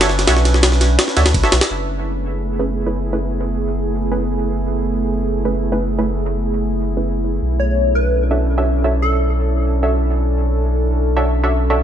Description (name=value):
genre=drum and bass, jungle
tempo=168 BPM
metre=4/4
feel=straight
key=F# minor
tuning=A4 = 440 Hz
part: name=warbly tape-like pad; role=sustained chords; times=0.0-11.8 s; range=A3 to B4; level=-22 LUFS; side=right 1 dB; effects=chorus, built-in reverb, vintage 12-bit sampler grit
part: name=filtered dub chord stab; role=stabs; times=0.0-11.8 s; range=A3 to E5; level=-23 LUFS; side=right 2 dB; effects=chorus, cassette tape, dub echo
part: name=saturated sub bass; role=bass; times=0.0-11.8 s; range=F#1 to D2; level=-18 LUFS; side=equal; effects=none
part: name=jungle sampler-style drum kit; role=drums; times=0.0-1.7 s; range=kick drum, ride cymbal, snare drum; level=-16 LUFS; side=equal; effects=none
part: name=plucky unison lead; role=melody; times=7.6-9.3 s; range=A4 to C#5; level=-22 LUFS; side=left 2 dB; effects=wide subtle chorus, dub echo
room=light reverb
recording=nothing above 10.5 kHz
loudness=-15 LUFS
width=side -9 dB against mid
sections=0.0-1.7 A section; 1.7-11.8 B section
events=drop 0.0-1.7; filter sweep on synth stab 1.7-11.8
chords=0.0 Bm11; 1.7 F#m11; 7.4 Bm11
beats=| 0.27 0.63 0.99 1.34 | 1.70 2.06 2.42 2.77 | 3.13 3.49 3.85 4.20 | 4.56 4.92 5.27 5.63 | 5.99 6.34 6.70 7.06 | 7.42 7.77 8.13 8.49 | 8.85 9.20 9.56 9.92 | 10.27 10.63 10.99 11.35 | 11.70